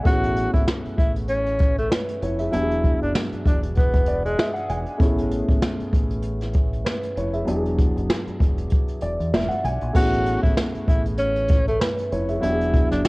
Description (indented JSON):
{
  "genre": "hip hop, boom-bap hip-hop",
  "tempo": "97 BPM",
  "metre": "4/4",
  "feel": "swing 57% on 16ths",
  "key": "A major",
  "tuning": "A4 = 440 Hz",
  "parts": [
    { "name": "dark baby grand piano", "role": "accompaniment", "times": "0.0-13.1 s", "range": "F#3 to G#5", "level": "-26 LUFS", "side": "equal", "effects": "cassette tape, high-pass filter, low-pass filter" },
    { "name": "breathy tenor saxophone", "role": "melody", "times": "0.1-4.5, 10.0-13.0 s", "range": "G#3 to F#4", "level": "-25 LUFS", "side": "equal", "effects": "high-pass filter, low-pass filter, cassette tape, tape echo" },
    { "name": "deep dub fingered electric bass", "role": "bass", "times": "0.1-13.0 s", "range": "E1 to E2", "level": "-27 LUFS", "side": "equal", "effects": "none" },
    { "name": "jazz brush drum kit", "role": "drums", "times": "0.1-13.1 s", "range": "crash cymbal, hi-hat, kick drum, snare drum", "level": "-21 LUFS", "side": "equal", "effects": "cassette tape" }
  ],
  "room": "light reverb, small room ambience",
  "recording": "home recording on cassette",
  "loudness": "-19 LUFS",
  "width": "side -25 dB against mid",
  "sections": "0.0-10.0 A section; 10.0-13.1 B section",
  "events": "none",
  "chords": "0.1 Amaj7; 2.5 E7; 5.0 Amaj7; 7.5 E7; 10.0 Amaj7; 12.4 E7"
}